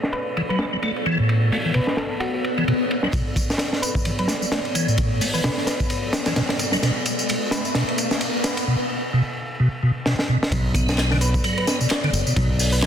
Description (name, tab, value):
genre	breakbeat, breaks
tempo	130 BPM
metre	4/4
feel	swing 57% on 16ths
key	B minor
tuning	A4 = 444 Hz
part	dark analog pad	sustained chords	0.0-12.9 s	B3 to D5	-30 LUFS	equal	chorus, vintage 12-bit sampler grit, sidechain pumping
part	crunchy breakbeat drum kit	drums	0.0-12.9 s	hi-hat, kick drum, ride cymbal, snare drum	-24 LUFS	equal	low-pass filter on kick, low-pass filter on cymbals, low-pass filter on hats, low-pass filter on snare, low-pass filter on room
part	thumb-piano-like synth pluck	melody	0.1-12.9 s	F#4 to B4	-32 LUFS	equal	chorus, old record sound, digital delay
part	tonewheel organ	riff	0.4-12.9 s	A2 to B3	-23 LUFS	equal	overdrive, chorus vibrato, slow rotary speaker, tube saturation, vintage 12-bit sampler grit, low-pass filter, digital delay
part	swell and riser	sound effects	2.4-8.7 s	none	-28 LUFS	left 2 dB	none
part	electronic tambourine and handclaps	drums	3.1-12.9 s	none	-30 LUFS	equal	none
part	modern bright fingered electric bass	bass	10.5-12.9 s	F#1 to B1	-22 LUFS	equal	none
room	moderate lush hall reverb, RT60 2.0 s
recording	dense, heavily limited modern master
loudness	-19 LUFS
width	side -9 dB against mid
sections	0.0-3.1 A section; 3.1-10.5 B section; 10.5-12.9 C section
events	swell 2.4-3.1; build-up 3.1-10.5; riser 3.1-8.7; drum fill 6.8-8.7, 10.1-10.5; drop 10.5-12.9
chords	0.0 Bm9